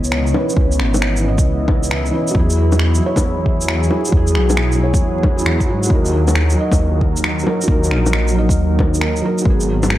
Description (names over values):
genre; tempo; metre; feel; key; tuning
future garage; 135 BPM; 4/4; swing 66% on 16ths; unclear; A4 = 437 Hz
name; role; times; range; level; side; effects
felt-muted upright piano; accompaniment; 0.0-10.0 s; E3 to D#5; -21 LUFS; right 2 dB; sidechain pumping, tape echo
deep dark ambient pad; sustained chords; 0.0-10.0 s; F#3 to D#5; -22 LUFS; left 1 dB; chorus, built-in reverb, vintage 12-bit sampler grit, sidechain pumping
dark detuned saw bass; bass; 0.0-10.0 s; G#1 to G#2; -18 LUFS; equal; sidechain pumping
electronic shaker, finger snaps and bongos; drums; 0.0-10.0 s; none; -22 LUFS; left 1 dB; none
electronic kick drum; drums; 0.6-9.6 s; none; -16 LUFS; equal; overdrive
room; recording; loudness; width
light reverb, digital ambience; vinyl crackle; -13 LUFS; side -14 dB against mid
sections
0.0-10.0 A section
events
none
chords
0.0 C#m7; 2.3 Eadd9; 5.9 D#m; 9.5 G#m7